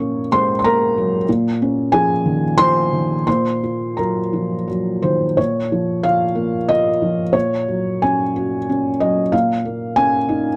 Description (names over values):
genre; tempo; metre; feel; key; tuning
neoclassical minimalist piano; 83-95 BPM; 3/4; rubato; Bb minor; A4 = 440 Hz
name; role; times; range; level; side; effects
felt-muted upright piano; solo; 0.0-10.6 s; Bb2 to Db6; -18 LUFS; equal; none
room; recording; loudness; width
little or no reverb; close, detailed microphones; -18 LUFS; mono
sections
0.0-5.4 A section; 5.4-10.6 B section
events
none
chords
0.0 Gb/Bb; 1.3 Dbadd9/Bb; 3.3 Ebmadd9/Bb; 5.4 Bbm; 7.3 Gb/Bb; 9.3 Dbadd9/Bb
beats
0.63 | 1.27 1.91 2.57 | 3.26 3.98 4.68 | 5.38 6.04 6.69 | 7.34 8.03 8.69 | 9.33 9.97